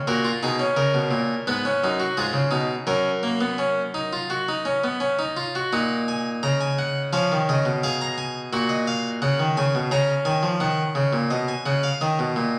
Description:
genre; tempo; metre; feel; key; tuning
classical, baroque-style 3-part fugue for harpsichord; 86 BPM; 4/4; straight; F# major; A4 = 442 Hz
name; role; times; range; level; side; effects
harpsichord; solo; 0.0-12.6 s; F#2 to A#5; -23 LUFS; equal; none
room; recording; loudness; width
wet recital hall reverb, RT60 1.3 s; vinyl crackle; -23 LUFS; mono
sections
0.0-5.7 A section; 5.7-11.3 B section; 11.3-12.6 A section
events
none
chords
0.1 F#/A# (rootless); 1.5 G#m7; 2.2 C#7/G#; 2.9 F#; 5.7 F#/A#; 7.1 C#7; 8.5 F#/A#; 9.9 F#/C#; 11.3 G#m/B

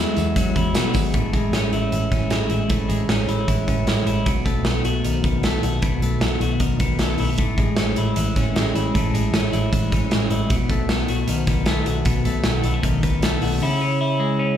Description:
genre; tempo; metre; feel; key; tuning
jangly indie pop; 154 BPM; 4/4; straight; unclear; A4 = 436 Hz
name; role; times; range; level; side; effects
twelve-string electric guitar; arpeggios; 0.0-14.6 s; E2 to F#4; -22 LUFS; left 3 dB; spring reverb, tape echo, slapback echo
vintage muted fingered electric bass; bass; 0.0-13.6 s; G#1 to B2; -24 LUFS; right 1 dB; tube saturation
big rock drum kit; drums; 0.2-13.5 s; hi-hat, kick drum, snare drum; -22 LUFS; right 1 dB; none
tambourine; percussion; 0.2-1.0 s; none; -37 LUFS; right 8 dB; none
room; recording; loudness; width
little or no reverb; live gig heard through the venue's PA, club reverb; -18 LUFS; side -10 dB against mid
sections
0.0-1.1 A section; 1.1-13.6 B section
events
none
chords
0.0 Eadd9; 1.1 Amaj7; 4.3 B7; 7.4 Amaj7; 10.5 B7; 13.6 C#m

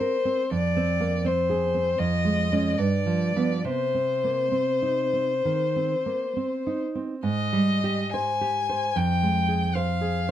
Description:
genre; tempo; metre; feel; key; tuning
romantic duo for violin and classical guitar; 64-83 BPM; 4/4; rubato; C minor; A4 = 440 Hz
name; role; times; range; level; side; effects
rich violin; melody; 0.0-10.3 s; C5 to Ab5; -26 LUFS; left 4 dB; plate reverb
nylon-string guitar; accompaniment; 0.0-10.3 s; F2 to C5; -25 LUFS; right 3 dB; none
room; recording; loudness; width
moderate studio reverb, RT60 0.6 s; none; -22 LUFS; side -11 dB against mid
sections
0.0-7.3 A section; 7.3-10.3 B section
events
none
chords
0.0 C7(no3); 0.5 Fm; 2.0 Db/F; 2.8 G7; 3.6 Cm; 7.3 Abmaj7; 9.0 Fmadd9

